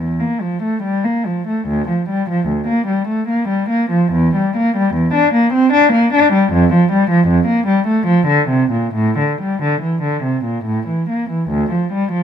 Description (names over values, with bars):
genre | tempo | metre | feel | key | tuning
classical, baroque-style suite movement for unaccompanied cello | 64-80 BPM | 3/4 | rubato | D minor | A4 = 441 Hz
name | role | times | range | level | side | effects
dark cello | solo | 0.0-12.2 s | D2 to D4 | -14 LUFS | equal | none
room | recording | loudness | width
light reverb | close, detailed microphones | -13 LUFS | side -8 dB against mid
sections
0.0-1.7 A section; 1.7-12.2 B section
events
none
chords
none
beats
0.84 | 1.69 2.49 3.29 | 4.14 4.96 5.75 | 6.53 7.29 8.07 | 8.95 9.83 10.66 | 11.51